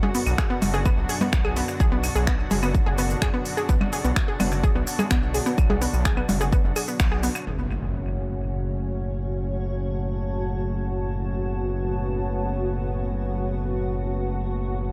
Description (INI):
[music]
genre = melodic techno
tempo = 127 BPM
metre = 4/4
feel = straight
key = F# minor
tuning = A4 = 440 Hz
[part]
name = lush unison pad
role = sustained chords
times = 0.0-14.9 s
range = A2 to F#4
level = -34 LUFS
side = equal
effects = chorus, sidechain pumping
[part]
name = analog pluck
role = arpeggios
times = 0.0-7.3 s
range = B3 to G#4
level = -31 LUFS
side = equal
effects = chorus, cassette tape, sidechain pumping, analog delay
[part]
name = analog drone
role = drone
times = 0.0-7.5 s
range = F#2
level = -41 LUFS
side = equal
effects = none
[part]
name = techno drum kit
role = drums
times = 0.0-7.4 s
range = claves, finger snaps, hi-hat, percussion blips, shaker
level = -30 LUFS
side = equal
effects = sidechain pumping on perc, low-pass filter on perc, sidechain pumping on hats, low-pass filter on hats, low-pass filter on snare, low-pass filter on room, analog delay
[part]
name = gritty driven synth bass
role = bass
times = 0.3-14.9 s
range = F#1 to E#2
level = -29 LUFS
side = equal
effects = sidechain pumping
[part]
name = electronic kick drum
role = drums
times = 0.4-7.1 s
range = none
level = -25 LUFS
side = equal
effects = none
[part]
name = impact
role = sound effects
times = 7.5-9.4 s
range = none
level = -38 LUFS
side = equal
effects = none
[part]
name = granular cloud pad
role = texture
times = 8.4-14.9 s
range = F#4 to A5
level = -35 LUFS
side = equal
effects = built-in reverb, sidechain pumping
[sound]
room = light reverb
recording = echo-heavy mix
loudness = -24 LUFS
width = mono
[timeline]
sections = 0.0-7.5 A section; 7.5-14.9 B section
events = band accent 7.0; impact 7.5-9.4; filter sweep on analog synth pad 7.5-14.9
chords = 0.0 Bm; 7.5 F#m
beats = 0.38 0.86 1.33 | 1.80 2.27 2.75 3.22 | 3.69 4.16 4.64 5.11 | 5.58 6.05 6.53 7.00 | 7.47 7.94 8.41 8.89 | 9.36 9.83 10.30 10.78 | 11.25 11.72 12.20 12.67 | 13.14 13.61 14.09 14.56